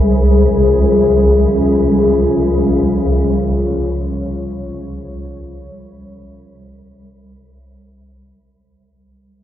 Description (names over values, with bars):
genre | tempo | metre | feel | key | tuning
dark ambient drone | free time | none | none | unclear | A4 = 441 Hz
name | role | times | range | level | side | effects
deep dark ambient pad | sustained chords | 0.0-8.7 s | Db4 to Db5 | -16 LUFS | left 3 dB | chorus, built-in reverb
swarming drone | drone | 0.0-8.8 s | C2 | -15 LUFS | right 1 dB | built-in reverb
bronze singing bowl | texture | 0.0-8.7 s | Ab3 to Ab4 | -25 LUFS | right 1 dB | none
room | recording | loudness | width
wet cathedral reverb, RT60 5.5 s | worn, warbling old tape, cassette tape, warbly pitch drift | -12 LUFS | side -11 dB against mid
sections
0.0-8.7 A section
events
fade-out 0.0-8.7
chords
0.0 Db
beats
free time